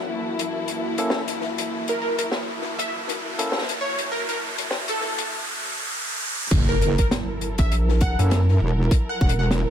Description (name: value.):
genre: glitch hop.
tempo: 100 BPM.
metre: 4/4.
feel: swing 58% on 16ths.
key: unclear.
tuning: A4 = 440 Hz.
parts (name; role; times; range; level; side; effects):
dark studio string section; sustained chords; 0.0-9.7 s; F#2 to A#4; -31 LUFS; left 1 dB; vintage 12-bit sampler grit, sidechain pumping.
riser and impact; sound effects; 0.1-8.9 s; none; -29 LUFS; right 1 dB; none.
airy breathy pad; texture; 0.0-9.7 s; A#3 to A5; -35 LUFS; right 1 dB; chorus, sidechain pumping.
open jazz drum kit; drums; 0.4-9.7 s; crash cymbal, hi-hat, snare drum; -28 LUFS; left 2 dB; high-pass filter on hats, high-pass filter on snare, high-pass filter on cymbals, high-pass filter on room.
barky tine electric piano; stabs; 1.0-3.6, 8.2-8.4 s; A#3 to A4; -31 LUFS; left 1 dB; vintage 12-bit sampler grit, sidechain pumping, low-pass filter, dub echo.
plucky unison lead; melody; 1.9-9.5 s; A4 to F#5; -29 LUFS; equal; wide subtle chorus, dub echo.
wobble bass; bass; 6.5-9.7 s; E1 to F#2; -20 LUFS; equal; chorus.
electronic kick drum; drums; 6.5-9.3 s; none; -20 LUFS; equal; none.
rubbery square bass; bass; 7.6-8.2 s; A#1; -20 LUFS; equal; none.
room: light reverb, small room ambience.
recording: high-pass filter.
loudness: -21 LUFS.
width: side -9 dB against mid.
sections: 0.0-6.5 A section; 6.5-9.7 B section.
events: build-up 0.0-6.5; filter sweep 0.0-6.5; riser 0.1-6.5; drop 6.5-9.7; impact 6.5-8.9.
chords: 0.0 F#7#9.